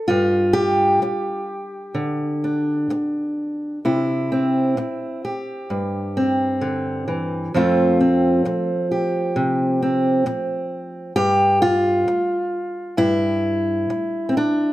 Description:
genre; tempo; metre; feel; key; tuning
folk, solo fingerstyle acoustic guitar; 65 BPM; 4/4; rubato; unclear; A4 = 444 Hz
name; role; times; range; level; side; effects
fingerpicked old ladder-braced acoustic guitar; solo; 0.0-14.7 s; F2 to G4; -18 LUFS; equal; none
room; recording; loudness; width
light reverb; none; -18 LUFS; side -16 dB against mid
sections
0.0-14.7 A section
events
none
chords
0.1 G5; 3.8 C; 7.5 F; 11.2 N.C.

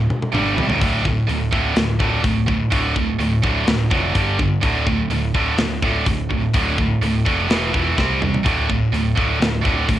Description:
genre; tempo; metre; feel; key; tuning
heavy metal; 126 BPM; 4/4; straight; unclear; A4 = 441 Hz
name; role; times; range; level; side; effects
fuzz guitar; riff; 0.0-0.8 s; D2 to G3; -27 LUFS; equal; distortion, cassette tape
heavy high-gain guitar; riff; 0.0-10.0 s; D2 to C4; -20 LUFS; right 5 dB; distortion, cassette tape
scooped high-gain guitar; riff; 0.0-10.0 s; D2 to C4; -24 LUFS; left 6 dB; distortion, cassette tape
overdriven picked electric bass; bass; 0.0-10.0 s; D1 to C2; -24 LUFS; left 1 dB; none
tight metal drum kit; drums; 0.1-10.0 s; hi-hat, kick drum, snare drum, toms; -22 LUFS; left 1 dB; cassette tape
room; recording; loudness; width
small room ambience; home recording on cassette; -16 LUFS; side -12 dB against mid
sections
0.8-10.0 A section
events
drum fill 0.0-0.8, 8.0-8.4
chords
0.0 D5; 4.2 G5; 4.6 D5; 7.5 E5; 8.0 C5; 8.4 D5

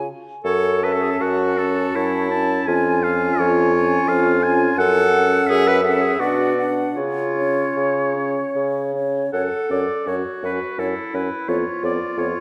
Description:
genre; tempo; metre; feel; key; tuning
classical, slow romantic movement for wind quintet; 66-88 BPM; 3/4; rubato; F# minor; A4 = 440 Hz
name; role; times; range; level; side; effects
concert flute; melody; 0.0-12.3 s; C#5 to A5; -29 LUFS; equal; none
clear French horn; accompaniment; 0.0-12.3 s; B3 to D4; -30 LUFS; equal; none
mellow bassoon; bass; 0.0-12.3 s; E#2 to C#3; -24 LUFS; equal; none
bright clarinet; accompaniment; 0.4-12.4 s; E4 to B4; -25 LUFS; equal; none
warm oboe; second line; 0.5-12.4 s; A4 to A5; -27 LUFS; equal; none
room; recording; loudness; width
moderate concert hall reverb, RT60 1.7 s; none; -20 LUFS; mono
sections
0.4-12.4 A section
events
none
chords
0.4 F#m; 2.7 C#/E#; 4.8 F#m; 6.2 Bm; 7.0 C#; 9.3 F#m; 11.5 C#7/E#

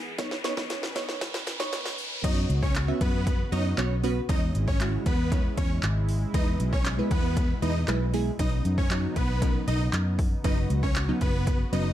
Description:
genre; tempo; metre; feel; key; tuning
dance-pop; 117 BPM; 4/4; straight; B major; A4 = 438 Hz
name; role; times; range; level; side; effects
warm analog pad; sustained chords; 0.0-11.9 s; B2 to B4; -38 LUFS; left 1 dB; chorus, sidechain pumping
riser; sound effects; 0.0-2.2 s; none; -36 LUFS; equal; none
wavetable chord stab; accompaniment; 0.2-11.9 s; F#3 to E5; -32 LUFS; right 2 dB; sidechain pumping
house drum kit; drums; 0.2-11.8 s; crash cymbal, handclaps, hi-hat, kick drum, snare drum; -28 LUFS; equal; overdrive
supersaw chords; melody; 2.2-11.8 s; B3 to D#5; -33 LUFS; equal; none
vintage muted fingered electric bass; bass; 2.2-11.9 s; F#1 to F#2; -27 LUFS; equal; sidechain pumping
room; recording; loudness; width
little or no reverb; dark, warm production, high-pass filter; -24 LUFS; side -12 dB against mid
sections
0.0-2.2 A section; 2.2-11.9 B section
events
build-up 0.0-2.2; drum fill 0.0-2.2; riser 0.0-2.2; filter sweep 0.0-2.2; drop 2.2-11.9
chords
0.2 Badd9; 2.2 F#sus4; 4.3 C#m; 6.3 E; 8.4 Badd9; 10.4 F#sus4

